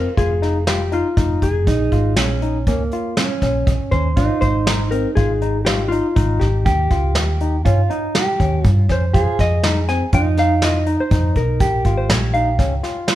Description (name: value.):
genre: progressive instrumental, band music in an uneven meter.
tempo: 121 BPM.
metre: 5/4.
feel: straight.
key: Bb dorian.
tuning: A4 = 438 Hz.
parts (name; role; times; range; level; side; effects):
hollow-body jazz guitar; melody; 0.0-13.2 s; F4 to Ab5; -22 LUFS; left 2 dB; none.
mellow electric guitar; second line; 0.0-13.2 s; Bb3 to Ab4; -24 LUFS; right 4 dB; none.
barky tine electric piano; arpeggios; 0.0-13.1 s; C4 to F4; -25 LUFS; left 4 dB; ping-pong delay.
hollow-body short-scale fingered electric bass; bass; 0.0-12.8 s; F1 to G2; -19 LUFS; equal; none.
vintage brush drum kit; drums; 0.2-13.2 s; hi-hat, kick drum, snare drum; -20 LUFS; equal; none.
room: light reverb.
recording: band playing live in one room.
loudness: -15 LUFS.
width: side -13 dB against mid.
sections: 0.0-13.2 A section.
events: none.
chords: 0.0 Fm7; 1.7 Bbm7; 4.2 Ab; 6.7 Eb7; 9.1 Fm7; 11.6 Bbm7.